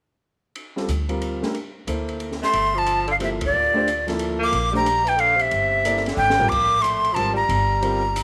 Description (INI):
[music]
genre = modal jazz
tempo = 182 BPM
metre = 3/4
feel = swing 63% on 8ths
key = G dorian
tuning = A4 = 440 Hz
[part]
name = open jazz drum kit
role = drums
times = 0.6-8.2 s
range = crash cymbal, hi-hat, kick drum, ride cymbal, snare drum, toms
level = -35 LUFS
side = equal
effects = none
[part]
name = warm concert grand piano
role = accompaniment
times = 0.8-8.0 s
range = F3 to D5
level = -30 LUFS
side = equal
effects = none
[part]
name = upright bass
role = bass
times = 0.9-8.2 s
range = G1 to D2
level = -30 LUFS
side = equal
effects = none
[part]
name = breathy bright jazz flute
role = melody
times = 2.4-8.2 s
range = D5 to D6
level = -22 LUFS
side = equal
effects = none
[part]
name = clear tenor saxophone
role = second line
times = 2.4-8.2 s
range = Bb2 to Bb3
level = -32 LUFS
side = equal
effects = none
[sound]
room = moderate plate reverb, RT60 1.4 s, small room ambience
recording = none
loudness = -21 LUFS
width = mono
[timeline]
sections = 0.6-2.5 A section; 2.5-8.2 B section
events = band accent 3.4; drum fill 6.2-6.5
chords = 0.6 Gm11